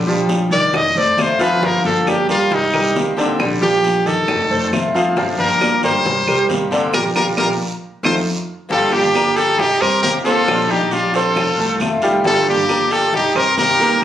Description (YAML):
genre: latin, Cuban son and guajira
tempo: 136 BPM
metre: 4/4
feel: straight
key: G minor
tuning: A4 = 445 Hz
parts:
  - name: picked swing-style acoustic guitar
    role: accompaniment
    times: 0.0-14.0 s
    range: D3 to G4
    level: -23 LUFS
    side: left 3 dB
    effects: none
  - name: upright bass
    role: bass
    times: 0.0-14.0 s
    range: F1 to G2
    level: -25 LUFS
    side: equal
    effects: none
  - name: warm grand piano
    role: arpeggios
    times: 0.1-14.0 s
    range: D3 to G6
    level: -19 LUFS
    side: right 2 dB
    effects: none
  - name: bongos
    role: percussion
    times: 0.1-13.8 s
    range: none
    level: -27 LUFS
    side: left 4 dB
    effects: none
  - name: guiro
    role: percussion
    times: 0.3-14.0 s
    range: none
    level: -30 LUFS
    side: right 3 dB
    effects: none
  - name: brilliant trumpet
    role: melody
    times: 0.5-14.0 s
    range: Eb4 to Eb5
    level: -16 LUFS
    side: left 1 dB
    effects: none
  - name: claves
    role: percussion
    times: 0.7-13.6 s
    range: none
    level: -26 LUFS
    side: right 2 dB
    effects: none
  - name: clear studio violin section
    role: second line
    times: 8.7-14.0 s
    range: D4 to G4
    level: -23 LUFS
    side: equal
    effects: slapback echo
room: moderate studio reverb, RT60 0.6 s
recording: recorded on a phone in the room, club reverb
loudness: -14 LUFS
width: side -11 dB against mid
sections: 0.0-8.7 A section; 8.7-14.0 B section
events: trumpet solo 0.0-8.7; band accent 6.9-8.7; drum fill 8.5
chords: 0.0 Bb69; 0.7 F7; 1.6 Gm7; 2.5 Cm7; 3.4 Bb6; 4.3 F7; 5.2 Gm7; 6.1 Cm7; 6.9 Bb6; 7.8 F7; 8.7 Gm7; 9.6 Cm7; 10.5 Bb69; 11.4 F7; 12.3 Gm7; 13.1 Cm7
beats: 0.29 0.74 1.18 | 1.62 2.07 2.51 2.95 | 3.40 3.84 4.28 4.73 | 5.17 5.61 6.05 6.50 | 6.94 7.38 7.83 8.27 | 8.71 9.15 9.60 10.04 | 10.48 10.93 11.37 11.81 | 12.25 12.70 13.14 13.58 | 14.03